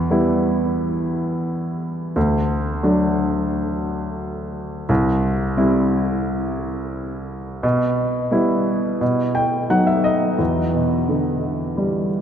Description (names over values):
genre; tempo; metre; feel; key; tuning
folk; 87 BPM; 4/4; straight; E minor; A4 = 440 Hz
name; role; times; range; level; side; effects
warm baby grand piano; solo; 0.0-12.2 s; C2 to G5; -18 LUFS; equal; none
room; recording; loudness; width
wet cathedral reverb, RT60 5.5 s; in a vast, echoing space; -18 LUFS; side -8 dB against mid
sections
0.0-10.4 A section; 10.4-12.2 B section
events
none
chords
0.0 Em; 2.2 D; 4.9 C; 7.6 Em/B; 9.0 B; 10.4 Em7